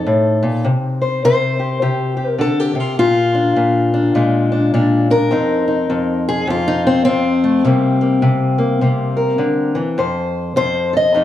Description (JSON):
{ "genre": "acoustic country blues, solo or duo", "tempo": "103 BPM", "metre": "4/4", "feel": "swing 61% on 8ths", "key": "F mixolydian", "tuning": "A4 = 440 Hz", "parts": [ { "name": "fingerpicked acoustic archtop guitar", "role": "solo", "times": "0.0-11.2 s", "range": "F2 to Eb5", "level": "-14 LUFS", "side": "left 1 dB", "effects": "none" } ], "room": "moderate spring reverb, RT60 1.7 s", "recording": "small room ambience", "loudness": "-14 LUFS", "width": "side -12 dB against mid", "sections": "0.0-10.0 A section; 10.0-11.2 A section", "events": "none", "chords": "0.0 F7 (rootless); 0.7 C5; 3.0 Bb7; 5.3 F7(no3); 7.6 C7(no3); 10.0 F7", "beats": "0.07 | 0.66 1.24 1.82 2.40 | 2.98 3.57 4.15 4.73 | 5.32 5.90 6.48 7.07 | 7.65 8.23 8.82 9.40 | 9.99 10.57 11.15" }